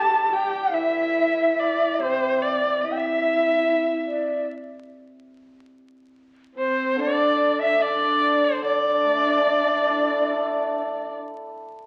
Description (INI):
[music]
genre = chinese traditional, Chinese chamber ensemble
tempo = 72 BPM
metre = 4/4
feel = rubato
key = D shang mode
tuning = A4 = 441 Hz
[part]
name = rich erhu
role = melody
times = 0.0-11.2 s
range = C5 to A5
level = -25 LUFS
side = equal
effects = none
[part]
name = breathy xiao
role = second line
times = 0.0-11.1 s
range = C5 to A5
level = -27 LUFS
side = equal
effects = none
[part]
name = dark horsehead fiddle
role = second line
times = 0.0-11.2 s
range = C4 to G4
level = -32 LUFS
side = equal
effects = none
[part]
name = hammered dulcimer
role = accompaniment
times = 0.0-11.9 s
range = C3 to A4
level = -32 LUFS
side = equal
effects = none
[sound]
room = wet recital hall reverb, RT60 1.3 s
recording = very old 78 rpm record, vinyl crackle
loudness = -22 LUFS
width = mono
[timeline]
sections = 0.0-11.9 A section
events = none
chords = none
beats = 0.33 1.17 | 2.01 2.84 3.67 4.50 | 5.33 6.17 6.99 7.82 | 8.65 9.48 10.32 11.20